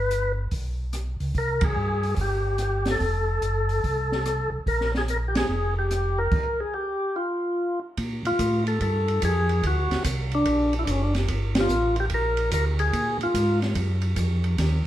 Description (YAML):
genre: soul jazz organ trio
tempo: 145 BPM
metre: 4/4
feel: swing 66% on 8ths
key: Bb major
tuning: A4 = 440 Hz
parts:
  - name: percussive tonewheel organ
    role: melody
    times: 0.0-13.6 s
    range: Db4 to Cb5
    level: -25 LUFS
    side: left 1 dB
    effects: slow rotary speaker
  - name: mellow tonewheel organ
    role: bass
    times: 0.0-14.8 s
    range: F1 to Bb2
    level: -25 LUFS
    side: equal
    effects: chorus vibrato, slow rotary speaker
  - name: open jazz drum kit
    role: drums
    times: 0.1-14.7 s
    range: crash cymbal, hi-hat, kick drum, ride cymbal, rim click, snare drum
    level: -29 LUFS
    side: right 1 dB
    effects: none
room: wet studio reverb, RT60 0.8 s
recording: heard from further back in the room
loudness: -22 LUFS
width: side -12 dB against mid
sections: 0.0-8.0 A section; 8.0-14.9 B section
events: band accent 1.5, 5.3, 11.5; stop 6.3-8.0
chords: 0.0 G; 1.3 C5; 3.0 F; 4.7 Bb5; 6.3 N.C.; 8.0 Bb5; 9.6 Daug7; 11.3 Gm9; 12.9 Bb5